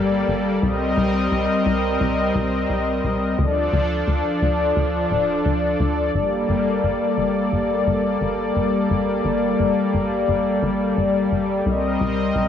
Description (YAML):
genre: synthwave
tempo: 87 BPM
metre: 4/4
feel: straight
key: G minor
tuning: A4 = 440 Hz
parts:
  - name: brassy analog pad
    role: sustained chords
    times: 0.0-12.5 s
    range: F3 to Eb5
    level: -19 LUFS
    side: left 2 dB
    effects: chorus
  - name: tight sequencer bass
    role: bass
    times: 0.0-12.5 s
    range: D1 to D2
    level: -25 LUFS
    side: left 1 dB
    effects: none
room: moderate lush hall reverb, RT60 2.5 s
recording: small room ambience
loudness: -18 LUFS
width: side -9 dB against mid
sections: 0.0-12.5 A section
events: none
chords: 0.0 Gmadd9; 0.6 Cm7; 3.4 Dm; 6.1 Gmadd9; 11.7 Cm7